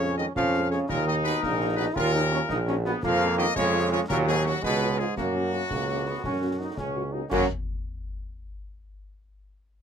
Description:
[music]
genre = military-style march for wind band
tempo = 112 BPM (dotted quarters)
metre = 6/8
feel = straight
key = F# major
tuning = A4 = 440 Hz
[part]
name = warm trumpet section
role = melody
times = 0.0-7.5 s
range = F#4 to E#5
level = -30 LUFS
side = left 4 dB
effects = none
[part]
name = clear euphonium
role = second line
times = 0.0-7.5 s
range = F#2 to F#3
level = -31 LUFS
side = right 5 dB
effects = none
[part]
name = dark French horn section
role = accompaniment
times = 0.0-7.5 s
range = F#3 to G#4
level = -34 LUFS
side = left 3 dB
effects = none
[part]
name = warm trombone section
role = sustained chords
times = 0.0-7.5 s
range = F#3 to E#4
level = -30 LUFS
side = left 1 dB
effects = none
[part]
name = warm tuba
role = bass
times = 0.0-7.5 s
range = A#1 to F#2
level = -28 LUFS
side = right 2 dB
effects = none
[part]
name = concert snare drum, concert bass drum and clash cymbals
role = drums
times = 0.2-7.5 s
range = none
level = -38 LUFS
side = left 2 dB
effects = none
[sound]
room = light reverb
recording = none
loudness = -23 LUFS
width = side -7 dB against mid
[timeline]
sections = 0.0-7.3 A section; 7.3-8.4 B section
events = none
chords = 0.0 C#/E#; 0.9 D#m; 3.0 C#/E#; 4.1 D#m; 4.6 C#7; 5.2 F#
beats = 0.36 | 0.90 1.43 | 1.96 2.50 | 3.03 3.57 | 4.10 4.64 | 5.17 5.71 | 6.24 6.78 | 7.31

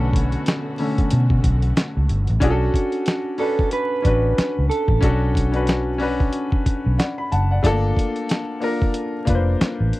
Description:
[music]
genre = R&B, neo-soul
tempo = 92 BPM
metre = 4/4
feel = swing 59% on 16ths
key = B minor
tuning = A4 = 440 Hz
[part]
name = clear grand piano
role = accompaniment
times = 0.0-10.0 s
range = D3 to B5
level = -24 LUFS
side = left 2 dB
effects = none
[part]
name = dark studio string section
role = sustained chords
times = 0.0-2.4 s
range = B2 to F#4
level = -34 LUFS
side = right 2 dB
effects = none
[part]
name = vintage muted fingered electric bass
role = bass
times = 0.0-9.9 s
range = F1 to B2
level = -19 LUFS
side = equal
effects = none
[part]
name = dusty soul sampler-style drum kit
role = drums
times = 0.1-10.0 s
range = hi-hat, kick drum, snare drum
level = -20 LUFS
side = equal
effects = none
[part]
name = mellow electric guitar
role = melody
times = 2.4-6.3 s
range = F#4 to B4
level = -24 LUFS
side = right 3 dB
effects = lush chorus, tape echo
[sound]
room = little or no reverb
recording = dry, close 1970s-style studio recording, vinyl crackle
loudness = -18 LUFS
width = side -18 dB against mid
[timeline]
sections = 0.0-2.4 A section; 2.4-10.0 B section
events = grand piano solo 0.0-2.4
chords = 0.0 Bm9; 7.6 Gm9 (rootless)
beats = 0.46 1.11 1.76 | 2.42 3.07 3.72 4.37 | 5.02 5.68 6.33 6.98 | 7.63 8.28 8.94 9.59

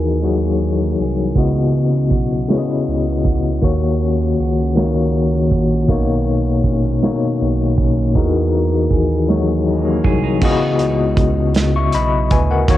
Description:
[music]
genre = slow six-eight R&B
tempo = 53 BPM (dotted quarters)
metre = 6/8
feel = straight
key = C# dorian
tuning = A4 = 440 Hz
[part]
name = clean electric guitar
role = second line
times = 0.0-11.0 s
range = B2 to G#4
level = -28 LUFS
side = right 7 dB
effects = cassette tape
[part]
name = overdriven tine electric piano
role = accompaniment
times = 0.0-12.8 s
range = B2 to C#6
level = -17 LUFS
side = left 3 dB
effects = medium tremolo, cassette tape
[part]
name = smooth synth bass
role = bass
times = 0.0-12.8 s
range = A#1 to E2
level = -20 LUFS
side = right 2 dB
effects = none
[part]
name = warm soul drum kit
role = drums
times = 1.4-12.8 s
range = crash cymbal, hi-hat, kick drum, snare drum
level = -18 LUFS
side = right 2 dB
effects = cassette tape
[sound]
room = light reverb, studio reverb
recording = home recording on cassette, low-pass filter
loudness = -14 LUFS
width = side -14 dB against mid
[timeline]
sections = 0.0-10.4 A section; 10.4-12.8 B section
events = filter sweep 0.0-10.4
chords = 0.0 Emaj9#11; 1.4 C#m11; 3.6 D#m7; 5.9 Bmaj9; 8.2 Emaj9#11; 10.4 C#m11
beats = 0.23 | 1.36 2.49 | 3.62 4.76 | 5.89 7.02 | 8.15 9.28 | 10.42 11.55 | 12.68

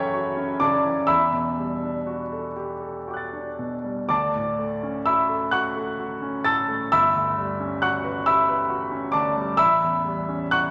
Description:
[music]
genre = classical, impressionist solo piano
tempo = 39-46 BPM (dotted quarters)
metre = 6/8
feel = rubato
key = D major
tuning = A4 = 440 Hz
[part]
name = clear concert grand piano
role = solo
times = 0.0-10.7 s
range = G1 to A6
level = -24 LUFS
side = equal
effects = none
[sound]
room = wet scoring stage reverb, RT60 2.1 s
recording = none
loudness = -24 LUFS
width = mono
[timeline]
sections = 0.0-10.7 A section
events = none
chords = 0.0 F#m7; 1.1 Em11; 4.1 Dmaj7; 6.9 Gmaj7#11; 9.6 A9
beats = | 1.08 2.56 | 4.09 5.52 | 6.91 8.25 | 9.59

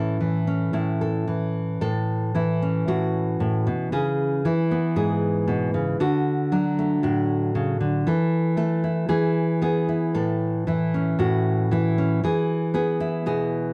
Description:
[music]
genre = folk, solo fingerstyle acoustic guitar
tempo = 115 BPM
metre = 4/4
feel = rubato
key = A major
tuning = A4 = 440 Hz
[part]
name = nylon-string guitar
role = solo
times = 0.0-13.7 s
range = G#2 to A4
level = -23 LUFS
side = equal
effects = none
[sound]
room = light reverb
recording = dark, warm production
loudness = -23 LUFS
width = mono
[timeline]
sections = 0.0-1.8 A section; 1.8-13.7 B section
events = none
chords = 0.0 A; 3.9 C#m7; 6.0 D; 8.1 Esus4; 9.1 E; 10.1 A; 12.2 E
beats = 0.19 0.73 1.27 | 1.82 2.35 2.88 3.41 | 3.93 4.45 4.97 5.48 | 5.99 6.51 7.03 7.54 | 8.06 8.56 9.09 9.62 | 10.15 10.67 11.20 11.72 | 12.23 12.75 13.26

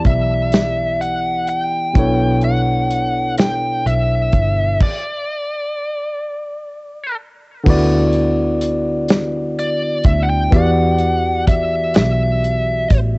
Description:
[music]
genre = slow six-eight R&B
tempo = 42 BPM (dotted quarters)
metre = 6/8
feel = straight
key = D major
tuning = A4 = 441 Hz
[part]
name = barky tine electric piano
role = accompaniment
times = 0.0-13.2 s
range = B2 to D5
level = -19 LUFS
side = left 1 dB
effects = overdrive, cassette tape
[part]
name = warm soul drum kit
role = drums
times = 0.0-13.1 s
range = crash cymbal, hi-hat, kick drum, snare drum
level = -15 LUFS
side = equal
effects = none
[part]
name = biting lead guitar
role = melody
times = 0.1-13.0 s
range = D5 to G5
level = -20 LUFS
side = equal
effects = overdrive, cassette tape
[part]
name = vintage muted fingered electric bass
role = bass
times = 0.1-13.2 s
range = G1 to E2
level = -19 LUFS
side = equal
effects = transformer saturation
[sound]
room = light reverb, studio reverb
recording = home recording on cassette, nothing above 8.0 kHz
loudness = -14 LUFS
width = side -27 dB against mid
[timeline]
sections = 0.0-7.7 A section; 7.7-13.2 B section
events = stop 4.8-7.7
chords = 0.0 Em7; 2.0 Bm11; 4.8 N.C.; 7.7 D69; 10.5 Em7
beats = 0.53 | 1.95 3.38 | 4.81 6.24 | 7.67 9.10 | 10.53 11.95

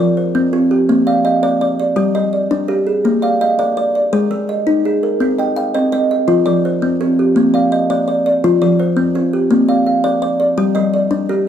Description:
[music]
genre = southern african traditional, mbira-style interlocking cycle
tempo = 111 BPM (dotted quarters)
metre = 12/8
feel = straight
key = F dorian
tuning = A4 = 438 Hz
[part]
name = kalimba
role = arpeggios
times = 0.0-11.5 s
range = F3 to F5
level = -16 LUFS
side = left 3 dB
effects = none
[part]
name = kalimba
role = arpeggios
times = 0.0-11.5 s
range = F3 to G5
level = -15 LUFS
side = right 3 dB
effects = none
[sound]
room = light reverb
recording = band playing live in one room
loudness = -13 LUFS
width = side -9 dB against mid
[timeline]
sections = 0.0-11.5 A section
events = none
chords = 0.0 F5; 0.9 Bb; 2.0 G5; 3.1 Bb; 4.1 Ab5; 5.2 Cm; 6.3 F5; 7.4 Bb; 8.4 F5; 9.5 Bb; 10.6 G5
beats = 0.35 0.89 1.43 | 1.97 2.51 3.05 3.59 | 4.13 4.67 5.21 5.75 | 6.29 6.83 7.37 7.90 | 8.44 8.98 9.51 10.05 | 10.58 11.12

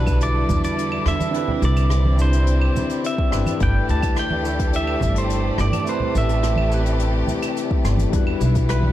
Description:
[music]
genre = sunset chillout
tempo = 106 BPM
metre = 4/4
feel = straight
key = A dorian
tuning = A4 = 440 Hz
[part]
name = pedal steel guitar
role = melody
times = 0.0-8.9 s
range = B4 to A5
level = -26 LUFS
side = equal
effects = tape echo
[part]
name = overdriven tine electric piano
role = accompaniment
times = 0.0-8.9 s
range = G3 to C5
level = -26 LUFS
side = moving between left 8 dB and right 9 dB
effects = auto-pan, tape echo
[part]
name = clear studio string section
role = sustained chords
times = 0.0-8.9 s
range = C3 to D5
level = -28 LUFS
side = left 1 dB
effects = none
[part]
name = upright bass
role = bass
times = 0.0-8.9 s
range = G1 to E2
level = -20 LUFS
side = equal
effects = tube saturation
[part]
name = electronic kick drum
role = drums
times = 0.1-8.7 s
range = none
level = -22 LUFS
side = equal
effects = overdrive
[part]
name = soft brush drum kit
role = drums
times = 0.1-8.8 s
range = claves, hi-hat, rim click, shaker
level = -32 LUFS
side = left 1 dB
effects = none
[part]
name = congas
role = percussion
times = 0.5-8.9 s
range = none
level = -28 LUFS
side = right 2 dB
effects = none
[sound]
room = light reverb, small room ambience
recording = dark, warm production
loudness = -18 LUFS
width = side -13 dB against mid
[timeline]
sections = 0.0-8.9 A section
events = none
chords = 0.0 Em7; 1.3 Cmaj9; 3.6 G69; 5.9 Am9; 8.1 Em7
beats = 0.20 0.77 | 1.34 1.90 2.47 3.04 | 3.60 4.17 4.73 5.30 | 5.87 6.43 7.00 7.56 | 8.13 8.70

